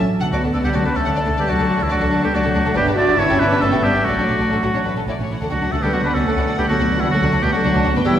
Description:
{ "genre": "quick classical-period movement for symphony orchestra", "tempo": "140 BPM", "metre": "3/4", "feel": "rubato", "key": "D major", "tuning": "A4 = 440 Hz", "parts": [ { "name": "rich studio violin section", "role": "melody", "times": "0.0-8.2 s", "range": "A4 to A5", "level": "-28 LUFS", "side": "left 4 dB", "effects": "none" }, { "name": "rich studio violin section", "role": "second line", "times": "0.0-8.2 s", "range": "C#4 to F#5", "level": "-25 LUFS", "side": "left 2 dB", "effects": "none" }, { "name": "dark studio viola section", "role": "accompaniment", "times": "0.0-8.2 s", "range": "G3 to F#4", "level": "-25 LUFS", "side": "equal", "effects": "none" }, { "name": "warm studio double bass section", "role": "bass", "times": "0.0-8.2 s", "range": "G1 to D2", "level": "-23 LUFS", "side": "right 1 dB", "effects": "none" }, { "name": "dark studio cello section", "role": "bass", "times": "0.2-8.2 s", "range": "A3 to D4", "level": "-24 LUFS", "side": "right 1 dB", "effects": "none" }, { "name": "clear oboe", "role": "second line", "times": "0.3-8.2 s", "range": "E4 to D5", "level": "-21 LUFS", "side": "right 1 dB", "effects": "none" }, { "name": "mellow French horn section", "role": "sustained chords", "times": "0.3-8.2 s", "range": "E3 to D4", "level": "-24 LUFS", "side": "left 2 dB", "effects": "none" } ], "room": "wet scoring stage reverb, RT60 2.1 s", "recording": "heard from further back in the room", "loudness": "-16 LUFS", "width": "side -10 dB against mid", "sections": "0.2-8.2 A section", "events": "none", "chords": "0.2 D; 2.8 Em7/G; 4.1 D/A; 5.0 A; 5.4 D", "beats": "| 0.21 0.65 1.07 | 1.50 1.93 2.35 | 2.77 3.19 3.62 | 4.06 4.51 4.96 | 5.40 5.83 6.25 | 6.68 7.12 7.54 | 7.96" }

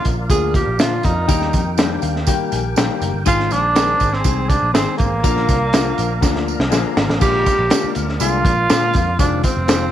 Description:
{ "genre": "uptempo 1960s-style soul", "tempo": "121 BPM", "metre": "4/4", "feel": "straight", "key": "Bb mixolydian", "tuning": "A4 = 440 Hz", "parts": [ { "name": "breathy tenor saxophone", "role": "melody", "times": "0.0-9.9 s", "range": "Bb3 to Ab4", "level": "-19 LUFS", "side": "right 2 dB", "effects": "none" }, { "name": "warm grand piano", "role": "accompaniment", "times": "0.0-9.9 s", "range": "D3 to Bb5", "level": "-23 LUFS", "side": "left 12 dB", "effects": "none" }, { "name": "percussive tonewheel organ", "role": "sustained chords", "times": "0.0-9.9 s", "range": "F4 to Bb5", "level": "-29 LUFS", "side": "equal", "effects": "fast rotary speaker, chorus vibrato" }, { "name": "crunchy breakbeat drum kit", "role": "drums", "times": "0.0-9.8 s", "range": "crash cymbal, hi-hat, kick drum, snare drum", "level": "-18 LUFS", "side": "equal", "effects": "none" }, { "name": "vintage muted picked electric bass", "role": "bass", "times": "0.1-9.9 s", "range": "F1 to Eb3", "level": "-22 LUFS", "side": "right 1 dB", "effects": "none" }, { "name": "tambourine", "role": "percussion", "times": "0.1-9.8 s", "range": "none", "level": "-31 LUFS", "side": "right 14 dB", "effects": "none" } ], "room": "light reverb, small room ambience", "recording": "1960s-style stereo with parts hard left and right", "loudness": "-14 LUFS", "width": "side -11 dB against mid", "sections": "0.0-7.2 A section; 7.2-9.9 B section", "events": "grand piano fill 1.8-3.3; drum fill 6.2-7.2", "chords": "0.0 Bb; 1.3 Eb; 3.3 Ab; 5.2 Bb; 7.2 Bb7; 9.2 Fm7", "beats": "0.30 0.79 | 1.29 1.78 2.27 2.77 | 3.26 3.76 4.25 4.75 | 5.24 5.73 6.23 6.72 | 7.22 7.71 8.21 8.70 | 9.19 9.69" }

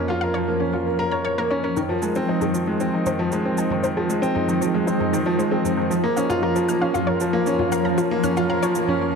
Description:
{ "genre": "piano and strings electronica", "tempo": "116 BPM", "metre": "4/4", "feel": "straight", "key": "F minor", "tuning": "A4 = 441 Hz", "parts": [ { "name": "granular cloud pad", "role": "sustained chords", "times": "0.0-9.2 s", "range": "F3 to Eb5", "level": "-24 LUFS", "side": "right 1 dB", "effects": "built-in reverb" }, { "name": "clear upright piano", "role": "riff", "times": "0.0-9.2 s", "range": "Eb3 to Db5", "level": "-22 LUFS", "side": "equal", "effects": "tape echo" }, { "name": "bright studio cello section", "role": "bass", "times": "0.0-1.7 s", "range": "F2", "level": "-32 LUFS", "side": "left 1 dB", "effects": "none" }, { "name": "analog pluck", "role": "arpeggios", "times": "0.1-8.7 s", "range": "Eb4 to F6", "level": "-30 LUFS", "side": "left 2 dB", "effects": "chorus, tape echo" }, { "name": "electronic toms and shaker", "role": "drums", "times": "1.8-9.0 s", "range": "none", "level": "-34 LUFS", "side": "right 2 dB", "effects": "none" } ], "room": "moderate huge ambient reverb, RT60 7.6 s", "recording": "dark, warm production", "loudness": "-19 LUFS", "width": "side -5 dB against mid", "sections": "0.0-1.8 A section; 1.8-9.2 B section", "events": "build-up 1.8-9.2; filter sweep on ambient pad 1.8-9.2; filter sweep on synth arpeggio sound 1.8-9.2", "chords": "0.0 Bbm/F; 1.8 Fm7; 5.9 Bbm/F", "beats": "0.22 0.74 1.25 | 1.77 2.29 2.81 3.32 | 3.84 4.36 4.88 5.39 | 5.91 6.43 6.94 7.46 | 7.98 8.49 9.01" }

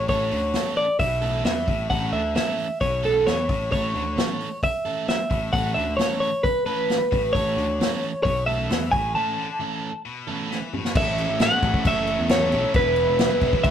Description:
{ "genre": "indie rock", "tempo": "133 BPM", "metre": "4/4", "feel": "straight", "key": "A major", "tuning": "A4 = 439 Hz", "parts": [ { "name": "twelve-string electric guitar", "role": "melody", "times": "0.0-13.7 s", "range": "A4 to A5", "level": "-23 LUFS", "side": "equal", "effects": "none" }, { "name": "scooped high-gain guitar", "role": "riff", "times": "0.0-13.7 s", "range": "A2 to E4", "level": "-34 LUFS", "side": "left 5 dB", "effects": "distortion" }, { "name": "modern bright picked electric bass", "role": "bass", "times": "0.0-13.7 s", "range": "E1 to E2", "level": "-28 LUFS", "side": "left 1 dB", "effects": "none" }, { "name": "sludgy distorted guitar", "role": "riff", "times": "0.1-13.7 s", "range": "E2 to A4", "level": "-30 LUFS", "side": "right 5 dB", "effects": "overdrive" }, { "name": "unplugged drum kit", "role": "drums", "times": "0.1-13.7 s", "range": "crash cymbal, hi-hat, kick drum, snare drum, toms", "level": "-25 LUFS", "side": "left 1 dB", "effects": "none" }, { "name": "lush unison pad", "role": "sustained chords", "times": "11.6-13.7 s", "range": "G#4 to C#6", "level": "-37 LUFS", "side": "equal", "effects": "chorus, phaser" }, { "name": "glockenspiel with rubber mallets", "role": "second line", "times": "11.0-13.7 s", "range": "G#6 to C#7", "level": "-41 LUFS", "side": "left 6 dB", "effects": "none" } ], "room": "moderate small room reverb, RT60 0.5 s", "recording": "rough rehearsal-room recording", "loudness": "-20 LUFS", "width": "side -9 dB against mid", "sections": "0.0-11.0 A section; 11.0-13.7 B section", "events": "break 9.2-11.0; drum fill 10.5-11.0", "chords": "0.0 A; 12.7 E", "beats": "| 0.09 0.55 1.00 1.45 | 1.91 2.36 2.81 3.27 | 3.72 4.17 4.63 5.08 | 5.53 5.99 6.44 6.89 | 7.34 7.79 8.25 8.70 | 9.15 9.60 10.05 10.50 | 10.95 11.40 11.85 12.30 | 12.74 13.19 13.64" }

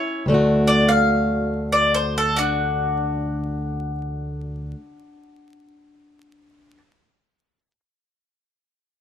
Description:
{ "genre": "acoustic country blues, solo or duo", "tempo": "95 BPM", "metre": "4/4", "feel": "swing 65% on 8ths", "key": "D major", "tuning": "A4 = 440 Hz", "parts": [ { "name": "bowl-back mandolin", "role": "melody", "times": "0.0-6.8 s", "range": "D4 to F5", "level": "-21 LUFS", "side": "left 1 dB", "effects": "none" }, { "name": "fingerpicked plugged-in swing-style acoustic guitar", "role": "accompaniment", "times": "0.0-4.8 s", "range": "D2 to F#4", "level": "-21 LUFS", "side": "equal", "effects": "none" } ], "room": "moderate small room reverb, RT60 0.5 s", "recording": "vinyl crackle", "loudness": "-18 LUFS", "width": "side -9 dB against mid", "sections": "0.3-5.3 A section", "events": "none", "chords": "0.3 D", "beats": "| 0.26 0.89 1.52 2.15 | 2.78 3.41 4.04 4.67" }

